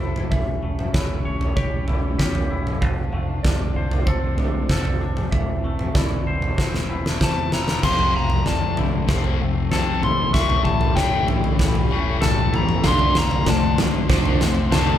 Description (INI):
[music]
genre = post-rock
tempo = 96 BPM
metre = 4/4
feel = straight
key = unclear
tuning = A4 = 443 Hz
[part]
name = muted studio string section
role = sustained chords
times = 0.0-15.0 s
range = E3 to C5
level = -33 LUFS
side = equal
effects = none
[part]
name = mellow electric guitar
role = arpeggios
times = 0.0-15.0 s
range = A4 to F5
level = -34 LUFS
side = right 2 dB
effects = none
[part]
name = twangy electric guitar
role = arpeggios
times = 0.0-12.8 s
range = E3 to C#5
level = -32 LUFS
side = left 2 dB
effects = none
[part]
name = growling fingered electric bass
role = bass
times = 0.0-15.0 s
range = E1 to E2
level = -27 LUFS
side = equal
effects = overdrive
[part]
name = huge arena drum kit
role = drums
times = 0.2-14.9 s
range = crash cymbal, kick drum, snare drum, toms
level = -21 LUFS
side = right 1 dB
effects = none
[part]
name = overdriven electric guitar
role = melody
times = 7.2-15.0 s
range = G5 to C#6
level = -24 LUFS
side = left 3 dB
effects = spring reverb
[part]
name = thick fuzz guitar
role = riff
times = 7.8-15.0 s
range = F2 to D4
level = -24 LUFS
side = left 7 dB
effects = distortion
[part]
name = overdriven electric guitar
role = riff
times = 12.8-15.0 s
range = F3 to D4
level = -25 LUFS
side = right 3 dB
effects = phaser
[sound]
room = moderate large studio reverb, RT60 1.1 s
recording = band playing live in one room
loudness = -18 LUFS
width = side -11 dB against mid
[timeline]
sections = 0.0-7.8 A section; 7.8-15.0 B section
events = drum fill 6.6-7.8, 7.8-15.0; build-up 7.8-15.0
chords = 0.3 A7/E; 2.8 Dm7/F; 5.3 Am/E; 7.8 Fmaj7; 10.3 A7/E; 12.8 Dm7/F